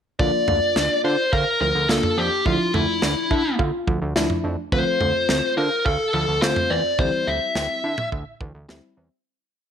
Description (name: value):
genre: synth-pop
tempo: 106 BPM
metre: 4/4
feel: straight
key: unclear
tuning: A4 = 440 Hz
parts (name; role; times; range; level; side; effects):
- dark smooth lead guitar; melody; 0.2-8.1 s; E4 to E5; -21 LUFS; left 2 dB; overdrive, slapback echo
- FM electric piano; accompaniment; 0.2-9.1 s; F3 to F4; -28 LUFS; left 1 dB; chorus
- warbly dusty pluck; arpeggios; 0.2-9.2 s; E3 to F5; -29 LUFS; right 4 dB; chorus, slapback echo
- fat analog bass; bass; 0.2-9.1 s; D2 to D3; -26 LUFS; right 1 dB; none
- modern studio drum kit; drums; 0.2-8.8 s; kick drum, snare drum, toms; -25 LUFS; right 1 dB; none
room: moderate digital room reverb, RT60 1.1 s, small room reverb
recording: none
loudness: -19 LUFS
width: side -8 dB against mid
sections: 0.2-9.3 verse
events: fade-out 7.0-9.3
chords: 0.2 Bb/D; 2.5 Dmadd9; 4.7 F/D; 7.0 C/D